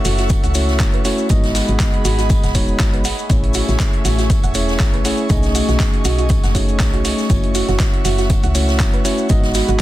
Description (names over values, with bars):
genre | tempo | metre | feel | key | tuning
deep house | 120 BPM | 4/4 | swing 55% on 16ths | F# dorian | A4 = 441 Hz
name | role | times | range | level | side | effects
airy breathy pad | sustained chords | 0.0-9.8 s | A3 to C#6 | -26 LUFS | equal | chorus, sidechain pumping
soft round pluck | arpeggios | 0.0-9.7 s | F#4 to F#5 | -27 LUFS | right 6 dB | chorus, sidechain pumping, dub echo
mellow tine electric piano | stabs | 0.0-9.8 s | G#3 to D#5 | -22 LUFS | equal | sidechain pumping, ping-pong delay
woody FM bass | bass | 0.0-9.8 s | D#1 to C#2 | -19 LUFS | equal | sidechain pumping
maracas | percussion | 0.0-9.8 s | none | -30 LUFS | left 8 dB | none
dusty soul sampler-style drum kit | drums | 0.1-9.8 s | handclaps, hi-hat | -26 LUFS | right 1 dB | soft clipping on snare
tambourine and snare drum | drums | 0.1-9.7 s | none | -32 LUFS | right 2 dB | high-pass filter on snare, high-pass filter on perc, high-pass filter on room
electronic kick drum | drums | 0.3-9.4 s | none | -17 LUFS | equal | none
room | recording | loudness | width
small room reverb | dense, heavily limited modern master | -14 LUFS | side -15 dB against mid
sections
0.0-9.8 A section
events
filter sweep on synth arpeggio sound 0.0-9.8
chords
0.0 F#m7; 1.3 G#m7; 3.0 Amaj7; 5.3 B13; 7.3 F#m7; 9.3 G#m7